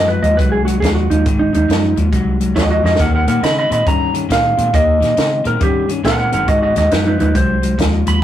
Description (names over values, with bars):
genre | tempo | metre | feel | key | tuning
electric blues shuffle | 138 BPM | 4/4 | swing 64% on 8ths | Ab mixolydian | A4 = 441 Hz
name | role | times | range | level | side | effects
electric slide guitar | second line | 0.0-8.2 s | Eb4 to Cb6 | -16 LUFS | right 1 dB | none
electric guitar at the edge of break-up | riff | 0.0-8.2 s | Ab2 to Db4 | -19 LUFS | left 3 dB | none
vintage muted fingered electric bass | bass | 0.0-8.2 s | G1 to Db3 | -18 LUFS | equal | none
compact cocktail drum kit | drums | 0.2-8.1 s | hi-hat, kick drum, snare drum | -19 LUFS | right 1 dB | none
room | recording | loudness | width
moderate studio reverb, RT60 0.6 s | rough rehearsal-room recording, warm saturation | -12 LUFS | side -11 dB against mid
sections
0.0-8.2 A section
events
electric slide guitar solo 0.0-8.2; drum fill 2.8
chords
0.0 Ab7; 3.0 Eb7; 6.5 Ab7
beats
0.38 0.81 | 1.25 1.69 2.12 2.56 | 2.99 3.43 3.86 4.30 | 4.74 5.17 5.61 6.04 | 6.48 6.91 7.35 7.79